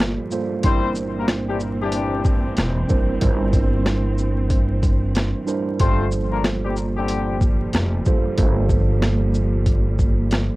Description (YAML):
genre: hip hop, boom-bap hip-hop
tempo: 93 BPM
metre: 4/4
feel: swing 62% on 16ths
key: G dorian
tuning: A4 = 440 Hz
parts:
  - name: mellow tine electric piano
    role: accompaniment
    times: 0.0-10.6 s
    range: G2 to C5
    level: -25 LUFS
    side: right 4 dB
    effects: cassette tape, high-pass filter, low-pass filter
  - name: warm studio string section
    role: sustained chords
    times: 0.0-10.6 s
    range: Bb2 to C4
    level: -28 LUFS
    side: equal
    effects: high-pass filter, low-pass filter, cassette tape
  - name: upright bass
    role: bass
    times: 0.0-10.5 s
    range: E1 to G1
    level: -23 LUFS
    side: equal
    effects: tube saturation
  - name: boom bap sampler-style drum kit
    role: drums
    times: 0.0-10.5 s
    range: hi-hat, kick drum, rim click, shaker, snare drum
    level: -20 LUFS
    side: equal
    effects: vintage 12-bit sampler grit, cassette tape
  - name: mellow horn section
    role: stabs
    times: 0.6-7.4 s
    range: D3 to C5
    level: -26 LUFS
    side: left 5 dB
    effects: high-pass filter, low-pass filter, cassette tape, analog delay
room: little or no reverb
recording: home recording on cassette, vinyl crackle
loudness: -18 LUFS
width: side -19 dB against mid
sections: 0.0-10.6 A section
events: none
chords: 0.0 Gm11; 0.6 C9; 5.8 Gm11